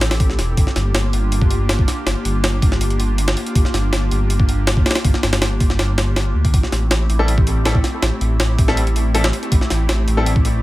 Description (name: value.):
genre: drum and bass, jungle.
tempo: 161 BPM.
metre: 4/4.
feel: straight.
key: unclear.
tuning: A4 = 439 Hz.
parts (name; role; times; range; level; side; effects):
airy breathy pad; sustained chords; 0.0-10.6 s; A3 to A4; -25 LUFS; equal; chorus.
dark detuned saw bass; bass; 0.0-10.6 s; E1 to D2; -18 LUFS; equal; none.
jungle sampler-style drum kit; drums; 0.0-10.5 s; hi-hat, kick drum, snare drum; -18 LUFS; equal; studio reverb.
bright baby grand piano; stabs; 7.2-10.3 s; G3 to A4; -23 LUFS; left 2 dB; vintage 12-bit sampler grit, dub echo.
room: little or no reverb.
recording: none.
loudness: -15 LUFS.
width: side -17 dB against mid.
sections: 0.0-10.6 A section.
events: none.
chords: 0.0 Am7; 0.6 Gm7; 6.5 Am7.